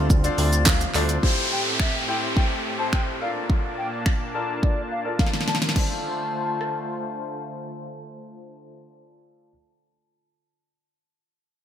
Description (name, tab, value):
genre	dance-pop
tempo	106 BPM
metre	4/4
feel	straight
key	D minor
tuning	A4 = 440 Hz
part	clear grand piano	accompaniment	0.0-9.5 s	D4 to A5	-31 LUFS	left 3 dB	wide subtle chorus, sidechain pumping, low-pass filter
part	warm analog pad	sustained chords	0.0-8.8 s	A2 to A5	-32 LUFS	right 1 dB	chorus, tremolo, sidechain pumping, low-pass filter
part	fat analog bass	bass	0.0-1.2 s	D2	-22 LUFS	equal	sidechain pumping
part	pop drum kit	drums	0.1-6.7 s	crash cymbal, finger snaps, handclaps, hi-hat, kick drum, rim click, shaker, snare drum	-21 LUFS	equal	gated reverb
part	tambourine	percussion	0.7-0.8 s	none	barely audible	none	none
part	downlifter	sound effects	1.2-5.8 s	none	-28 LUFS	equal	none
part	mellow concert flute	melody	1.5-7.4 s	D5 to A5	-31 LUFS	left 2 dB	low-pass filter, ping-pong delay
room	light reverb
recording	bright 1980s-style digital production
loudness	-21 LUFS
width	side -9 dB against mid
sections	0.0-1.2 A section; 1.2-5.8 B section; 5.8-8.0 C section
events	grand piano fill 0.4-1.2; drum fill 5.2-5.8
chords	0.0 Dm7; 1.2 Am7; 3.2 Bbmaj7; 5.8 Dm7